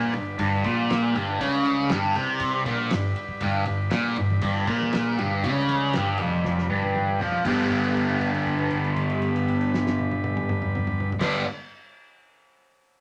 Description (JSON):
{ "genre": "psychedelic rock", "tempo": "119 BPM", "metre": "4/4", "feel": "straight", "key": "G mixolydian", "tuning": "A4 = 441 Hz", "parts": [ { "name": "combo organ", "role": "sustained chords", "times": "0.0-11.4 s", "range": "G3 to D5", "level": "-35 LUFS", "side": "equal", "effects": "none" }, { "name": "crunchy overdriven guitar", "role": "riff", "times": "0.0-11.4 s", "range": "F2 to D4", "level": "-25 LUFS", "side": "equal", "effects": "phaser" }, { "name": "fuzz picked electric bass", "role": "bass", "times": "0.0-11.4 s", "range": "F1 to F2", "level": "-38 LUFS", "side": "equal", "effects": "overdrive" }, { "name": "cloth-damped thuddy drum kit", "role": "drums", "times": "0.1-11.3 s", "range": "crash cymbal, kick drum, ride cymbal, snare drum, toms", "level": "-36 LUFS", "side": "equal", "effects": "none" }, { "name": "congas", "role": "percussion", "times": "3.4-7.7 s", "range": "none", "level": "-43 LUFS", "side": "equal", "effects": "none" } ], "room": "wet studio reverb, RT60 0.6 s", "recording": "none", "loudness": "-24 LUFS", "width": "mono", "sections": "0.0-7.5 A section; 7.5-11.5 B section", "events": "drum fill 6.4-7.5; held note 7.5-11.2", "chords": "0.0 G" }